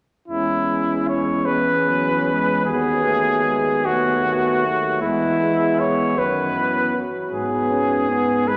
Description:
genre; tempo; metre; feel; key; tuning
classical, hymn-like piece for brass band; 52 BPM (dotted quarters); 6/8; rubato; E major; A4 = 440 Hz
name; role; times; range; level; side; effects
clear cornet; melody; 0.3-8.6 s; E4 to C#5; -22 LUFS; equal; none
mellow flugelhorn; second line; 0.3-8.6 s; G#3 to C#4; -29 LUFS; equal; none
brilliant trombone; accompaniment; 0.3-8.6 s; D#3 to G#3; -32 LUFS; equal; none
warm euphonium; accompaniment; 0.3-8.6 s; F#3 to B3; -29 LUFS; equal; none
warm tuba; bass; 0.3-8.6 s; D#2 to G#2; -30 LUFS; equal; none
room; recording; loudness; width
wet church reverb, RT60 3.1 s; none; -20 LUFS; mono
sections
0.3-8.6 A section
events
none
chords
0.3 E; 2.7 B7/D#; 5.0 E; 7.3 E/G# (rootless)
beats
| 0.29 1.48 | 2.67 3.86 | 5.02 6.17 | 7.31 8.46

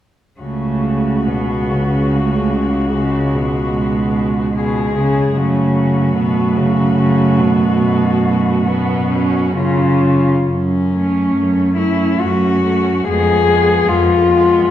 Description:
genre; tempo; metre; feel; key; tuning
classical, lyrical piece for cello ensemble; 62-77 BPM; 3/4; rubato; F# minor; A4 = 440 Hz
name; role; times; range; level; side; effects
muted cello; melody; 0.4-14.7 s; C#4 to Ab4; -18 LUFS; left 4 dB; none
muted cello; second line; 0.4-14.7 s; G#3 to C#4; -20 LUFS; right 5 dB; none
muted cello; accompaniment; 0.4-14.7 s; B2 to A3; -18 LUFS; left 1 dB; none
muted cello; bass; 0.4-14.7 s; C#2 to F#2; -18 LUFS; right 2 dB; none
room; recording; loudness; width
wet recital hall reverb, RT60 1.6 s; heard from further back in the room; -13 LUFS; side -11 dB against mid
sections
0.4-10.5 A section; 10.5-14.7 B section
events
none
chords
0.4 F#m/C#; 5.4 F#m; 13.1 Fdim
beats
| 0.40 1.27 2.13 | 2.94 3.75 4.55 | 5.36 6.17 6.98 | 7.80 8.66 9.57 | 10.50 11.35 12.21 | 13.07 13.87 14.66

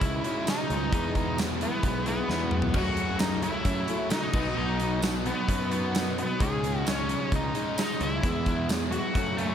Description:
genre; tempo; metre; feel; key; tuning
classic rock; 131 BPM; 4/4; straight; unclear; A4 = 440 Hz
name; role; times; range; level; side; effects
octave-fuzz lead guitar; melody; 0.0-9.5 s; B3 to A4; -31 LUFS; equal; wah, distortion
bright tonewheel organ; sustained chords; 0.0-9.5 s; E3 to D#5; -43 LUFS; equal; none
distorted electric guitar; riff; 0.0-9.5 s; E2 to C#4; -38 LUFS; right 1 dB; none
overdriven semi-hollow guitar; riff; 0.0-9.5 s; F#2 to E4; -35 LUFS; left 11 dB; none
sludgy distorted guitar; riff; 0.0-9.5 s; F#2 to E4; -35 LUFS; right 13 dB; overdrive
fuzz picked electric bass; bass; 0.0-9.5 s; B1 to F#2; -32 LUFS; equal; overdrive
huge arena drum kit; drums; 0.0-9.5 s; crash cymbal, hi-hat, kick drum, snare drum, tambourine, toms; -30 LUFS; equal; none
dark upright piano; accompaniment; 0.2-9.5 s; E3 to G#5; -39 LUFS; left 7 dB; none
room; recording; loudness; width
small room ambience; none; -25 LUFS; side -9 dB against mid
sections
0.0-9.5 A section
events
drum fill 2.3-2.8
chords
0.0 C#sus2; 0.9 E; 2.8 F#m; 4.3 B; 6.4 C#sus2; 8.2 E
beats
0.02 0.48 | 0.93 1.39 1.84 2.29 | 2.75 3.21 3.66 4.12 | 4.58 5.03 5.49 5.95 | 6.40 6.86 7.32 7.78 | 8.24 8.70 9.15

